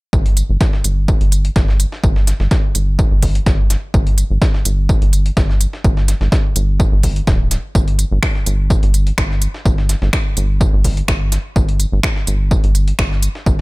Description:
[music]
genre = minimal techno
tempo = 126 BPM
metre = 4/4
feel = swing 53% on 16ths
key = unclear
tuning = A4 = 442 Hz
[part]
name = rubbery square bass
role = bass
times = 0.1-13.6 s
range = D1 to G1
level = -16 LUFS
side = equal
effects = sidechain pumping
[part]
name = dusty soul sampler-style drum kit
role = drums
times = 0.1-13.6 s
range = hi-hat, snare drum, tambourine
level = -29 LUFS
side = equal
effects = sidechain pumping on perc, high-pass filter on perc, sidechain pumping on hats, high-pass filter on hats, high-pass filter on snare
[part]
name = electronic kick drum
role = drums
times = 0.1-13.6 s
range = none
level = -15 LUFS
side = equal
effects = none
[part]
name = techno drum kit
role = drums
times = 0.4-13.3 s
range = finger snaps, hi-hat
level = -22 LUFS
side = right 1 dB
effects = none
[sound]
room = little or no reverb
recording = none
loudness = -13 LUFS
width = side -23 dB against mid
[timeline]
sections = 0.1-13.6 A section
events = none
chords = none

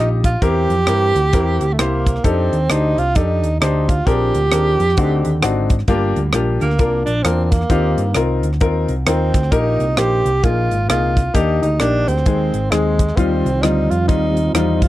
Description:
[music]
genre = uptempo gospel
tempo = 132 BPM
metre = 4/4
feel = swing 61% on 8ths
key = Eb major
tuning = A4 = 441 Hz
[part]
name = breathy tenor saxophone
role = melody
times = 0.0-14.9 s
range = Ab3 to G4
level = -20 LUFS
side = right 2 dB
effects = none
[part]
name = clear concert grand piano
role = accompaniment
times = 0.0-14.8 s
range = G2 to Eb5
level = -20 LUFS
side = left 3 dB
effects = none
[part]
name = picked electric bass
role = bass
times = 0.0-14.9 s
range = G1 to G2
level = -19 LUFS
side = equal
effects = none
[part]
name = tight funk drum kit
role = drums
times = 0.2-14.9 s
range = hi-hat, kick drum, rim click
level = -18 LUFS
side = equal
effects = none
[part]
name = tonewheel organ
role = sustained chords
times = 13.2-14.9 s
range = Eb3 to F4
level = -23 LUFS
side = right 3 dB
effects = slow rotary speaker, chorus vibrato
[sound]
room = little or no reverb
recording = dry, close 1970s-style studio recording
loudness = -14 LUFS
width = side -15 dB against mid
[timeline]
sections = 0.0-14.9 A section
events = none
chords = 0.4 C7; 2.2 F13; 4.1 Bb9; 5.0 D7b9; 5.9 Gm7; 7.7 Eb69; 9.5 Eb/Bb; 10.4 Bb7sus4; 11.3 Ebmaj7; 12.3 Ab; 13.2 Eb69

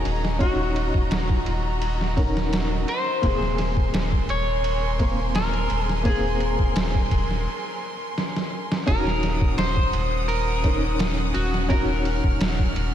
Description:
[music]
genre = trip hop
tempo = 85 BPM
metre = 4/4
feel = straight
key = Eb dorian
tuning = A4 = 439 Hz
[part]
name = clean electric guitar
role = melody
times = 0.0-12.4 s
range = Gb4 to Db5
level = -28 LUFS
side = left 1 dB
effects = wide subtle chorus, tape echo
[part]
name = felt-muted upright piano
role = accompaniment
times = 0.0-12.9 s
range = C3 to C5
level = -30 LUFS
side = left 1 dB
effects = tremolo, tape echo
[part]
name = rich chamber violin section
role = sustained chords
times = 0.0-12.9 s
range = Db4 to F6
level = -31 LUFS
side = equal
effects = none
[part]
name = soft dub sub bass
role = bass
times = 0.0-12.9 s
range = Eb1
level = -26 LUFS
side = equal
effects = none
[part]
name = trip hop sampler-style drum kit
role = drums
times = 0.1-12.9 s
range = kick drum, ride cymbal, snare drum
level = -25 LUFS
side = equal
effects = none
[sound]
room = moderate lush hall reverb, RT60 3.1 s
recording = dreamy mix soaked in reverb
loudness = -21 LUFS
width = side -10 dB against mid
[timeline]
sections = 0.0-8.9 A section; 8.9-12.9 B section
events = break 7.5-8.9; drum fill 8.2-8.9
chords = 0.0 Ebm7; 3.2 Abadd9/Eb; 8.9 Ebm7

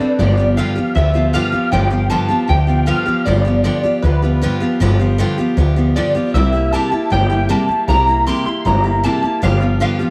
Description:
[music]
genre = rockabilly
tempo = 156 BPM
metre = 4/4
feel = straight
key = G mixolydian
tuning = A4 = 438 Hz
[part]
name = electric guitar through a small old amp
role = melody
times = 0.0-10.1 s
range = B4 to C6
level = -21 LUFS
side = equal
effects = ensemble chorus, tape echo
[part]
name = picked steel-string acoustic guitar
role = accompaniment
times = 0.0-10.1 s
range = G2 to A4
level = -20 LUFS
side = equal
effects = none
[part]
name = upright bass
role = bass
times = 0.0-10.0 s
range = G1 to D2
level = -18 LUFS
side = equal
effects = none
[sound]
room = light reverb, studio reverb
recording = none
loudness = -16 LUFS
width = mono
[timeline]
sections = 0.2-10.1 A section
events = none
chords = 0.2 G7; 6.3 C7; 9.4 G7

